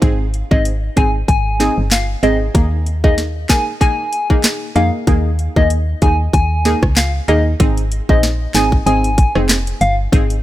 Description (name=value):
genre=dancehall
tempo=95 BPM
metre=4/4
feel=swing 56% on 16ths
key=Ab major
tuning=A4 = 440 Hz
part: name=punchy chord stab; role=accompaniment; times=0.0-10.4 s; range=Bb3 to Ab4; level=-20 LUFS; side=right 1 dB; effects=chorus, sidechain pumping
part: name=woody FM bass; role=bass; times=0.0-10.4 s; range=F1 to F2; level=-17 LUFS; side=equal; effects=none
part: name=island pop drum kit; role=drums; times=0.0-10.4 s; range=handclaps, hi-hat, kick drum, rim click, snare drum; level=-15 LUFS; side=equal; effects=none
part: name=soft struck synth lead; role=melody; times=0.5-10.0 s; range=Eb5 to Ab5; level=-20 LUFS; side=left 2 dB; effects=chorus, ping-pong delay
room=digital ambience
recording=none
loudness=-13 LUFS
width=side -14 dB against mid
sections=0.0-7.6 A section; 7.6-10.4 B section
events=none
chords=0.0 Ab; 2.5 Ebsus4; 7.6 Ab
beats=| 0.02 0.65 1.28 1.92 | 2.55 3.18 3.81 4.44 | 5.07 5.71 6.34 6.97 | 7.60 8.23 8.86 9.49 | 10.13